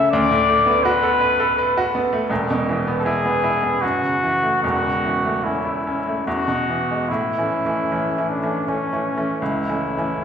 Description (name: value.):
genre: classical, romantic duo for trumpet and grand piano.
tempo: 70-83 BPM.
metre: 3/4.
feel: rubato.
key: A major.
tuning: A4 = 440 Hz.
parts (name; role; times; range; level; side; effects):
mellow trumpet; melody; 0.0-10.2 s; C#4 to E5; -20 LUFS; left 2 dB; none.
bright baby grand piano; accompaniment; 0.0-10.2 s; E1 to B4; -21 LUFS; right 1 dB; none.
room: wet recital hall reverb, RT60 1.5 s.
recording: recorded in a church or concert hall.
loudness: -18 LUFS.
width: side -7 dB against mid.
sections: 0.0-7.1 A section; 7.1-10.2 B section.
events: none.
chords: 0.1 Bm7/D; 2.3 E; 3.8 F#m7; 4.6 A/E; 6.3 E; 7.1 A; 9.4 A/C#.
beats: | 0.10 0.83 1.56 | 2.30 3.05 3.82 | 4.63 5.45 6.26 | 7.09 7.89 8.65 | 9.40 10.23.